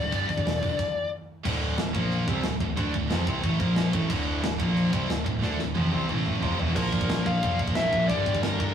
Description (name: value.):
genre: heavy metal.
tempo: 180 BPM.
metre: 4/4.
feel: straight.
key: D minor.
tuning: A4 = 440 Hz.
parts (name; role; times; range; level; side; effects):
high-gain lead guitar; melody; 0.0-1.1, 6.8-8.7 s; Bb4 to F5; -28 LUFS; left 3 dB; distortion.
heavy high-gain guitar; riff; 0.0-8.7 s; D2 to D4; -32 LUFS; right 6 dB; distortion.
high-gain distorted guitar; riff; 0.0-8.7 s; D2 to D4; -33 LUFS; left 4 dB; distortion.
picked electric bass; bass; 0.0-8.7 s; D1 to D2; -29 LUFS; equal; none.
tight metal drum kit; drums; 0.1-8.7 s; china cymbal, crash cymbal, hi-hat, kick drum, snare drum, toms; -29 LUFS; equal; none.
thick fuzz guitar; riff; 1.4-8.7 s; D2 to D4; -33 LUFS; right 1 dB; none.
room: moderate studio reverb, RT60 0.5 s.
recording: rough rehearsal-room recording, warm saturation, small room ambience.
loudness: -24 LUFS.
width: side -8 dB against mid.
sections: 0.0-1.4 A section; 1.4-6.8 B section; 6.8-8.7 C section.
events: stop 0.8-1.4; drum fill 5.4-6.8.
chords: 0.0 G5; 1.4 D5; 1.9 Bb5; 2.3 Dm; 3.6 Bb5; 3.9 D5; 4.6 Bb5; 4.9 Dm; 6.1 A5; 6.4 Cadd11; 6.8 Bb5; 8.1 Gm.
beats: | 0.11 0.44 0.77 1.11 | 1.44 1.77 2.10 2.44 | 2.77 3.10 3.43 3.76 | 4.09 4.43 4.76 5.09 | 5.42 5.76 6.09 6.42 | 6.76 7.09 7.42 7.76 | 8.09 8.42.